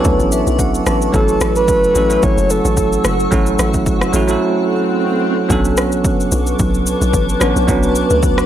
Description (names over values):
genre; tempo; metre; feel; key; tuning
amapiano; 110 BPM; 4/4; swing 55% on 16ths; B minor; A4 = 435 Hz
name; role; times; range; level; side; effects
bell-like tine electric piano; accompaniment; 0.0-8.5 s; F#3 to A5; -17 LUFS; right 3 dB; none
granular cloud pad; sustained chords; 0.0-8.5 s; A4 to F#6; -21 LUFS; left 2 dB; built-in reverb
deep house drum kit; drums; 0.0-8.5 s; kick drum, rim click, shaker; -18 LUFS; left 1 dB; overdrive
hollow log drum bass; bass; 0.1-8.4 s; F#1 to D2; -19 LUFS; equal; none
breathy flute-like synth lead; melody; 1.1-3.0 s; A4 to C#5; -17 LUFS; right 1 dB; chorus, analog delay
swell; sound effects; 4.5-5.5 s; none; -25 LUFS; right 4 dB; none
room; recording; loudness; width
digital ambience; dry, gritty hardware recording, transformer saturation; -12 LUFS; side -11 dB against mid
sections
0.0-5.5 A section; 5.5-8.5 B section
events
tine electric piano fill 0.0-1.1; swell 4.5-5.5; drop 5.5-8.5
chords
0.0 Bm9; 1.1 A6; 5.5 Bm9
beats
0.05 0.59 | 1.14 1.68 2.23 2.77 | 3.32 3.87 4.41 4.96 | 5.50 6.05 6.59 7.14 | 7.68 8.23